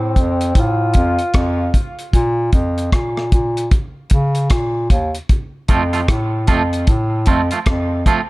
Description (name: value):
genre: dub reggae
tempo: 76 BPM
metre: 4/4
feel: swing 62% on 16ths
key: unclear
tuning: A4 = 440 Hz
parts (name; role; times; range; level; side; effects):
- clear tenor saxophone; melody; 0.0-1.8 s; C4 to F4; -23 LUFS; equal; low-pass filter, dub echo
- warm bass clarinet; bass; 0.0-8.0 s; Eb2 to Db3; -18 LUFS; equal; none
- cloth-damped thuddy drum kit; drums; 0.2-8.3 s; hi-hat, kick drum, rim click; -16 LUFS; equal; none
- twangy electric guitar; accompaniment; 5.7-8.2 s; F3 to F4; -20 LUFS; right 5 dB; spring reverb, low-pass filter, dub echo
room: small room ambience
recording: dark, warm production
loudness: -14 LUFS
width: side -20 dB against mid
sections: 0.0-8.3 A section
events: break 0.0-5.3; filter sweep 0.0-8.3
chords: 0.0 F; 2.1 N.C.; 5.3 F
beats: 0.55 1.34 | 2.13 2.92 3.71 4.50 | 5.29 6.08 6.87 7.66